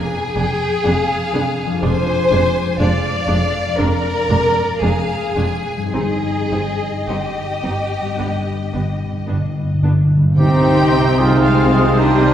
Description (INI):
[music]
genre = classical, slow romantic movement for symphony orchestra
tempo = 51-62 BPM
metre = 4/4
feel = rubato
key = C minor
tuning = A4 = 440 Hz
[part]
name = clear chamber violin section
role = melody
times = 0.0-12.3 s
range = D5 to Ab5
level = -28 LUFS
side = left 3 dB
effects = none
[part]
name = rich studio violin section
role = second line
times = 0.0-12.3 s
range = C4 to D5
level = -20 LUFS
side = left 2 dB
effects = none
[part]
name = concert harp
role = arpeggios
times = 0.0-12.3 s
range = F2 to C5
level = -24 LUFS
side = left 2 dB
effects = none
[part]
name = warm studio viola section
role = accompaniment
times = 0.4-12.3 s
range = G3 to Eb4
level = -26 LUFS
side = equal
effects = none
[part]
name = rich chamber cello section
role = bass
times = 0.4-12.3 s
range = F2 to C3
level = -24 LUFS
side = right 1 dB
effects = none
[part]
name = warm chamber double bass section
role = bass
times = 0.4-12.3 s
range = F1 to C2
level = -23 LUFS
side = right 2 dB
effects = none
[part]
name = timpani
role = percussion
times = 8.2-11.9 s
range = G2 to C3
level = -17 LUFS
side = equal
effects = none
[part]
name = clear clarinet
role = second line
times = 10.4-12.3 s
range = Eb4 to G4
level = -23 LUFS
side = left 1 dB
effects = none
[part]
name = mellow cor anglais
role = second line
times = 10.4-12.3 s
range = G4 to Bb4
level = -21 LUFS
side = right 2 dB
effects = none
[part]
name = small flute group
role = second line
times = 10.4-12.3 s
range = Eb4 to G4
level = -22 LUFS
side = equal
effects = none
[part]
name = warm French horn section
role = sustained chords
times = 10.4-12.3 s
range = Eb3 to C4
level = -24 LUFS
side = left 1 dB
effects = none
[part]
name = warm trumpet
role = stabs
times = 10.4-12.3 s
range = C5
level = -25 LUFS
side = right 2 dB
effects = none
[sound]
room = wet concert hall reverb, RT60 2.1 s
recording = heard from further back in the room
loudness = -15 LUFS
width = side -10 dB against mid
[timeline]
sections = 0.0-10.4 A section; 10.4-12.3 B section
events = timpani fill 8.2-10.4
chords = 0.0 Fdim7; 1.8 Dm7b5/F; 5.9 Cm/G; 8.2 G; 10.4 Cm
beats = 0.86 | 1.84 2.81 3.80 4.83 | 5.95 7.09 8.20 9.29 | 10.38 11.45